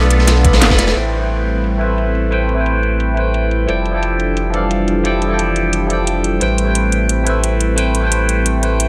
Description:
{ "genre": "liquid drum and bass", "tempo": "176 BPM", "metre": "4/4", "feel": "straight", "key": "A minor", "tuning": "A4 = 440 Hz", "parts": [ { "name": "barky tine electric piano", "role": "accompaniment", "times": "0.0-8.9 s", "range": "E3 to B5", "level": "-20 LUFS", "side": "equal", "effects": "phaser, low-pass filter, tape echo" }, { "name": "lush unison pad", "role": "sustained chords", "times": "0.0-8.9 s", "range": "G3 to B5", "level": "-26 LUFS", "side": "equal", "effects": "chorus, sidechain pumping" }, { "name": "warm sub bass", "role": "bass", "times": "0.0-8.9 s", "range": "F1 to B1", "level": "-20 LUFS", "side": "equal", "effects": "none" }, { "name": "crunchy breakbeat drum kit", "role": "drums", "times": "0.0-1.0 s", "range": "ride cymbal, snare drum", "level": "-23 LUFS", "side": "equal", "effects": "high-pass filter on cymbals, studio reverb, high-pass filter on snare, high-pass filter on room" }, { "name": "garage drum kit", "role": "drums", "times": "0.1-8.9 s", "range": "hi-hat, snare drum", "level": "-23 LUFS", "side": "equal", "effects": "low-pass filter on hats, studio reverb, low-pass filter on snare" }, { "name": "electronic kick drum", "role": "drums", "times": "0.4-0.8 s", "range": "none", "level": "-16 LUFS", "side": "equal", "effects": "studio reverb" } ], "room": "light reverb, digital ambience", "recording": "none", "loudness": "-16 LUFS", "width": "mono", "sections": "1.0-8.9 A section", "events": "filter sweep on drum 1.0-8.9; filter sweep on analog synth pad 1.0-8.9", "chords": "0.0 Bm7b5; 1.0 Am9; 3.7 Fmaj13; 6.4 Am9" }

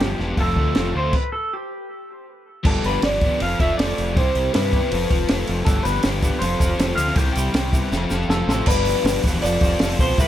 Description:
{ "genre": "indie rock", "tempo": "159 BPM", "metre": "4/4", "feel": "straight", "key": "unclear", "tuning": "A4 = 440 Hz", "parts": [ { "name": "electric guitar through a small old amp", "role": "melody", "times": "0.0-10.3 s", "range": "G4 to G5", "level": "-25 LUFS", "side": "equal", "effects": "phaser, tape echo" }, { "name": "crunchy overdriven guitar", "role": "riff", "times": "0.0-10.3 s", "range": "F3 to A4", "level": "-27 LUFS", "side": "left 6 dB", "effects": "none" }, { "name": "overdriven electric guitar", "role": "riff", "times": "0.0-10.3 s", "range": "F2 to D4", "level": "-28 LUFS", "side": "right 3 dB", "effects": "wide subtle chorus" }, { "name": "growling fingered electric bass", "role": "bass", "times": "0.0-10.3 s", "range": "E1 to G2", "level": "-25 LUFS", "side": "equal", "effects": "overdrive" }, { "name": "compact cocktail drum kit", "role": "drums", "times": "0.0-10.3 s", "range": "crash cymbal, hi-hat, kick drum, snare drum", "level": "-21 LUFS", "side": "equal", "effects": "none" }, { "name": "dark analog pad", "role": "sustained chords", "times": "5.7-10.3 s", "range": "G4 to C6", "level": "-36 LUFS", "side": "right 1 dB", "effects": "none" }, { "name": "egg shaker", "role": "percussion", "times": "5.7-10.3 s", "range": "none", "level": "-37 LUFS", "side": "right 5 dB", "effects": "none" }, { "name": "synth chime", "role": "second line", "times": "8.7-10.3 s", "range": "D5 to F5", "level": "-34 LUFS", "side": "right 2 dB", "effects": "ensemble chorus, tape echo" } ], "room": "light reverb", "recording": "none", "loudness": "-18 LUFS", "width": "side -12 dB against mid", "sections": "0.0-2.7 A section; 2.7-8.7 B section; 8.7-10.3 C section", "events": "stop 1.1-2.7; drum fill 7.9-8.7", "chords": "0.4 F; 1.1 N.C.; 2.7 G7; 3.4 F; 4.2 Cmaj7; 4.9 F; 5.7 G7; 6.4 F; 7.2 Cmaj7; 7.9 F; 8.7 G7; 9.4 F" }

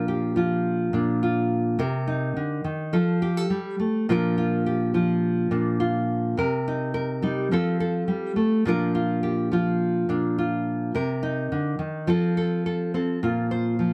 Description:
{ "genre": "highlife", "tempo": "105 BPM", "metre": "4/4", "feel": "straight", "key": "Bb major", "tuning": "A4 = 439 Hz", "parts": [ { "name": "nylon-string guitar", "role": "solo", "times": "0.0-13.9 s", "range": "Bb2 to C5", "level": "-25 LUFS", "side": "equal", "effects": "none" } ], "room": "moderate spring reverb, RT60 1.3 s", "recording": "none", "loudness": "-25 LUFS", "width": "mono", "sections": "0.0-13.2 A section", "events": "none", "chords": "0.0 Bb; 1.8 Cm7; 2.9 F; 4.1 Bb; 6.4 Cm7; 7.5 F; 8.7 Bb; 10.9 Cm7; 12.1 F; 13.2 Bbsus2" }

